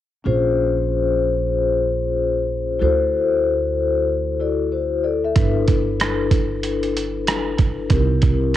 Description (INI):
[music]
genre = hip hop, jazz-hop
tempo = 94 BPM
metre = 4/4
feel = swing 64% on 16ths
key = unclear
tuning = A4 = 442 Hz
[part]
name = vibraphone with soft mallets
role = accompaniment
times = 0.2-8.6 s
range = C4 to E5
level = -20 LUFS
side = left 5 dB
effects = cassette tape
[part]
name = upright bass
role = bass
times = 0.3-8.6 s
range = G1 to D2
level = -24 LUFS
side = right 3 dB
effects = none
[part]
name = dusty soul sampler-style drum kit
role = drums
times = 5.4-8.6 s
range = hi-hat, kick drum, rim click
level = -19 LUFS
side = right 3 dB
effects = cassette tape
[sound]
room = studio reverb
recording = home recording on cassette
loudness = -17 LUFS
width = side -12 dB against mid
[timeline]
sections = 0.3-8.6 A section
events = none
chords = 0.3 Bbm9; 2.8 D9; 5.4 G6; 7.9 C7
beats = | 0.25 0.89 1.53 2.17 | 2.81 3.44 4.08 4.72 | 5.36 6.00 6.63 7.27 | 7.91 8.55